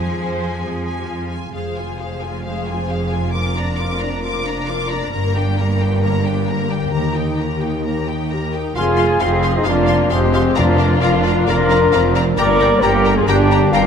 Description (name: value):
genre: cinematic, heroic adventure film score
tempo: 133 BPM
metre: 4/4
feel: straight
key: F dorian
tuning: A4 = 440 Hz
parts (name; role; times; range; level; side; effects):
- rich symphonic violin section; melody; 0.0-13.8 s; F5 to D6; -27 LUFS; left 3 dB; none
- rich studio violin section; second line; 0.0-13.8 s; G4 to Bb5; -28 LUFS; left 2 dB; none
- warm symphonic viola section; accompaniment; 0.0-13.9 s; Bb3 to C5; -26 LUFS; equal; none
- concert harp; arpeggios; 0.0-13.9 s; F2 to C6; -25 LUFS; left 9 dB; none
- rich symphonic cello section; bass; 0.0-13.9 s; Eb2 to F3; -23 LUFS; right 2 dB; none
- rich symphonic double bass section; bass; 0.0-13.9 s; F1 to F2; -22 LUFS; right 3 dB; none
- mellow French horn section; sustained chords; 1.6-13.9 s; Ab3 to D5; -22 LUFS; left 4 dB; none
- concert flute; second line; 8.8-13.9 s; C5 to D6; -24 LUFS; left 1 dB; none
- mellow cor anglais; second line; 8.8-13.9 s; Ab3 to Bb4; -26 LUFS; right 1 dB; none
- dark trombone section; sustained chords; 8.8-13.9 s; D3 to F4; -27 LUFS; right 4 dB; none
- mellow trumpet; stabs; 8.8-13.9 s; Ab3 to Bb4; -23 LUFS; right 1 dB; none
- timpani; percussion; 10.6-11.2 s; F2; -21 LUFS; equal; none
room: moderate scoring stage reverb, RT60 1.5 s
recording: none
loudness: -15 LUFS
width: side -7 dB against mid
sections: 0.0-1.5 A section; 1.5-8.8 B section; 8.8-13.9 A section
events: none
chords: 0.0 Fm; 3.3 Bb/F; 5.1 Gm; 6.9 Eb; 8.8 Fm; 10.6 Bb/F; 12.4 Gm